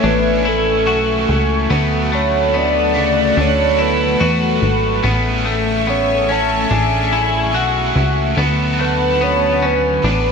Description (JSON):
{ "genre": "dream pop", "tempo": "72 BPM", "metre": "4/4", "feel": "straight", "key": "unclear", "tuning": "A4 = 442 Hz", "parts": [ { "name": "soft octave-layered synth lead", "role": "melody", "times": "0.0-10.3 s", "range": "A4 to A5", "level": "-19 LUFS", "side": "equal", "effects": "chorus, ping-pong delay" }, { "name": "cranked stack guitar", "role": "accompaniment", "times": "0.0-10.3 s", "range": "D3 to B4", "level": "-22 LUFS", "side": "right 4 dB", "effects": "overdrive, tremolo, wide subtle chorus" }, { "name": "phased analog pad", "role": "sustained chords", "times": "0.0-10.3 s", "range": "A3 to C#6", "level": "-20 LUFS", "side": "left 1 dB", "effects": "phaser, chorus" }, { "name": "clean electric guitar", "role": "arpeggios", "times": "0.0-10.3 s", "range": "C#3 to F#4", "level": "-21 LUFS", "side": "left 4 dB", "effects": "lush chorus, ping-pong delay" }, { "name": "plucky analog bass", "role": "bass", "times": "0.0-10.3 s", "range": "G#1 to E2", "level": "-20 LUFS", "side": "equal", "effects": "none" } ], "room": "wet plate reverb, RT60 2.3 s", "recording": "dreamy mix soaked in reverb", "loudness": "-13 LUFS", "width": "side -5 dB against mid", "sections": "0.0-10.3 A section", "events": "none", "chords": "0.0 Amaj7; 1.7 D6; 5.0 Amaj7; 8.4 D6", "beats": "0.04 0.87 | 1.70 2.54 3.37 4.20 | 5.04 5.87 6.70 7.54 | 8.37 9.20 10.04" }